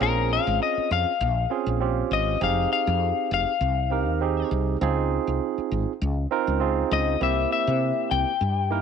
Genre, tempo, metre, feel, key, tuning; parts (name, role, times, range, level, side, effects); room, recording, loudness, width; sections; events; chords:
straight-eighth soul blues; 100 BPM; 4/4; swing 53% on 16ths; F minor; A4 = 441 Hz
lightly driven lead guitar; melody; 0.0-8.8 s; Bb4 to G5; -25 LUFS; left 11 dB
barky tine electric piano; accompaniment; 0.0-8.8 s; Bb3 to Bb4; -26 LUFS; right 12 dB; auto-pan
woody fretless electric bass; bass; 0.0-8.8 s; F1 to C3; -26 LUFS; equal; lush chorus
light reverb; 1960s-style stereo with parts hard left and right; -22 LUFS; side -7 dB against mid
0.0-8.8 A section
0.0 Bbm7; 2.4 Fm7; 4.8 Dbmaj7; 7.2 C7